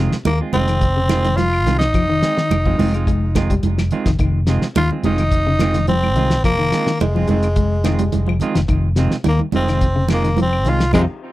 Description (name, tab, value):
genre	afrobeat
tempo	107 BPM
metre	4/4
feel	straight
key	F minor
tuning	A4 = 439 Hz
part	electric guitar at the edge of break-up	arpeggios	0.0-11.0 s	C3 to Ab3	-23 LUFS	left 4 dB	spring reverb
part	semi-hollow electric guitar	stabs	0.0-11.0 s	Eb3 to F4	-25 LUFS	right 5 dB	tape echo
part	fingered electric bass	bass	0.0-11.1 s	F1 to F2	-19 LUFS	equal	none
part	cloth-damped thuddy drum kit	drums	0.1-11.1 s	hi-hat, kick drum, snare drum	-21 LUFS	equal	none
part	growling tenor saxophone	melody	0.3-11.0 s	Ab3 to F4	-20 LUFS	equal	none
part	claves	percussion	0.3-11.1 s	none	-35 LUFS	left 7 dB	none
part	congas	percussion	0.3-11.1 s	none	-23 LUFS	right 7 dB	none
room	light reverb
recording	dry, close 1970s-style studio recording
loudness	-15 LUFS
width	side -16 dB against mid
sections	0.0-11.3 A section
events	band accent 10.9-11.3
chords	0.0 Fm7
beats	0.26 0.82 1.39 | 1.95 2.51 3.07 3.64 | 4.20 4.76 5.32 5.89 | 6.45 7.01 7.57 8.13 | 8.70 9.26 9.82 10.38 | 10.94